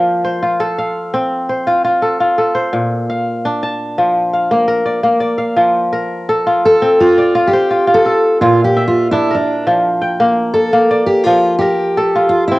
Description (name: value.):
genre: west african traditional, West African string and xylophone music.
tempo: 84 BPM.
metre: 4/4.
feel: straight.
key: F major.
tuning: A4 = 440 Hz.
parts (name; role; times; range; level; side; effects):
kora; arpeggios; 0.0-12.6 s; Bb2 to A5; -14 LUFS; equal; cassette tape, plate reverb.
fingerpicked steel-string acoustic guitar; melody; 6.7-12.6 s; D4 to A4; -12 LUFS; equal; plate reverb.
room: wet booth ambience, RT60 0.2 s.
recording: home recording on cassette.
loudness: -12 LUFS.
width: side -19 dB against mid.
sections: 0.0-5.6 A section; 5.6-12.6 B section.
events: steel-string acoustic guitar solo 5.6-12.6.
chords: 0.0 F; 2.7 Bb; 5.6 F; 8.4 Bb; 11.3 F.